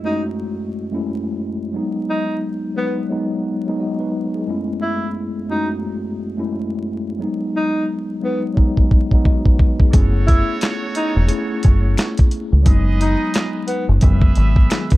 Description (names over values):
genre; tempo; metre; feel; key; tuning
hip hop, boom-bap hip-hop; 88 BPM; 4/4; swing 59% on 16ths; F# dorian; A4 = 441 Hz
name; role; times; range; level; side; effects
mellow tine electric piano; accompaniment; 0.0-15.0 s; F#2 to D#5; -22 LUFS; left 1 dB; medium stereo tremolo, high-pass filter, low-pass filter
breathy tenor saxophone; melody; 0.1-13.9 s; B3 to E4; -23 LUFS; equal; high-pass filter, low-pass filter, slapback echo
dusty soul sampler-style drum kit; drums; 8.6-15.0 s; handclaps, hi-hat, kick drum, snare drum; -14 LUFS; equal; none
muted trumpet section; stabs; 9.9-15.0 s; F#4 to E5; -29 LUFS; right 4 dB; high-pass filter, low-pass filter, slapback echo
deep dub fingered electric bass; bass; 9.9-14.7 s; E1 to C#2; -15 LUFS; equal; none
finger snap; percussion; 10.6-14.9 s; none; -37 LUFS; left 11 dB; none
room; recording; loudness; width
small room ambience; dark, warm production, vinyl crackle; -16 LUFS; side -17 dB against mid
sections
0.0-9.9 A section; 9.9-15.0 B section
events
drum fill 8.6-9.9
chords
0.0 F#m7; 1.8 G#m7/F#; 4.5 F#m7; 7.2 G#m7/F#; 9.9 F#m7; 12.7 G#m7/F#; 14.0 Emaj7/F#